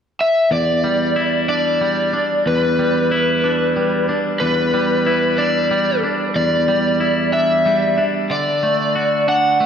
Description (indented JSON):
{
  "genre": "rock",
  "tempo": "62 BPM (dotted quarters)",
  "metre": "6/8",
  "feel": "straight",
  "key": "E minor",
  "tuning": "A4 = 440 Hz",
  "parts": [
    { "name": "lead guitar through a small cranked amp", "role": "melody", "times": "0.2-9.7 s", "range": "B4 to F#5", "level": "-17 LUFS", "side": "left 1 dB", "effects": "overdrive, tape echo" },
    { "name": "twangy electric guitar", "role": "arpeggios", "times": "0.5-9.7 s", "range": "E2 to F#4", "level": "-18 LUFS", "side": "right 1 dB", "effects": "spring reverb, slapback echo, tape echo" }
  ],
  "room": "wet recital hall reverb, RT60 1.7 s",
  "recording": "big arena sound",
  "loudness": "-15 LUFS",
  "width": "side -7 dB against mid",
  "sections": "0.5-9.7 A section",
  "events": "none",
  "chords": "0.0 N.C.; 0.5 Em7; 8.3 D"
}